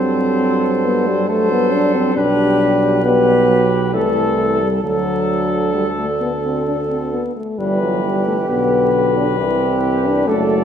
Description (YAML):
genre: classical, brass quintet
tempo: 67 BPM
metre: 3/4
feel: straight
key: G major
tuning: A4 = 437 Hz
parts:
  - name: warm trumpet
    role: melody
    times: 0.0-10.6 s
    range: A4 to D5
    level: -23 LUFS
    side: left 5 dB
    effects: none
  - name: warm flugelhorn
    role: second line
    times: 0.0-10.6 s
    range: G4 to A4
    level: -23 LUFS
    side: right 5 dB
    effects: none
  - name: clear euphonium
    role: accompaniment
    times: 0.0-10.6 s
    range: D3 to G3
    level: -24 LUFS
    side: right 1 dB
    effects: none
  - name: mellow French horn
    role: accompaniment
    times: 0.0-10.6 s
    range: F#3 to D4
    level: -18 LUFS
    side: left 2 dB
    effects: none
  - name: clear tuba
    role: bass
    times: 0.0-10.6 s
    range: F#1 to G2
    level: -21 LUFS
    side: right 3 dB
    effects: none
room: moderate scoring stage reverb, RT60 1.5 s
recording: minimal, uncompressed stereo recording, vinyl crackle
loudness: -14 LUFS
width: side -8 dB against mid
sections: 0.0-10.6 A section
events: none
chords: 0.0 F#dim/G; 2.2 G/B; 3.9 Am/C; 4.8 D; 7.6 G; 9.4 Cmaj7